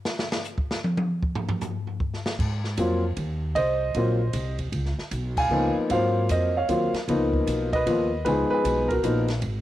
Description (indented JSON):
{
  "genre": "jazz piano trio",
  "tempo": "154 BPM",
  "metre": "3/4",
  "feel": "swing 65% on 8ths",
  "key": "unclear",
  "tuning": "A4 = 440 Hz",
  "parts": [
    { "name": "open jazz drum kit", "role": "drums", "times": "0.1-9.5 s", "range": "crash cymbal, hi-hat, kick drum, ride cymbal, snare drum, toms", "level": "-30 LUFS", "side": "equal", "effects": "cassette tape" },
    { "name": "upright bass", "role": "bass", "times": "2.4-9.6 s", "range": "Ab1 to Ab2", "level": "-27 LUFS", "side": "equal", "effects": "none" },
    { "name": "warm upright piano", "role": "melody", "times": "2.8-9.3 s", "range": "F3 to Ab5", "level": "-23 LUFS", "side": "equal", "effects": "cassette tape" }
  ],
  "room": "light reverb, small room ambience",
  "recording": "home recording on cassette",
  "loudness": "-22 LUFS",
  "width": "side -14 dB against mid",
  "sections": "0.0-2.4 A section; 2.4-9.6 B section",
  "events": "drum solo 0.0-2.4; band accent 5.3",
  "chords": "0.0 N.C.; 2.4 Ab69; 4.7 Db13; 5.9 Ab13; 7.1 Db13"
}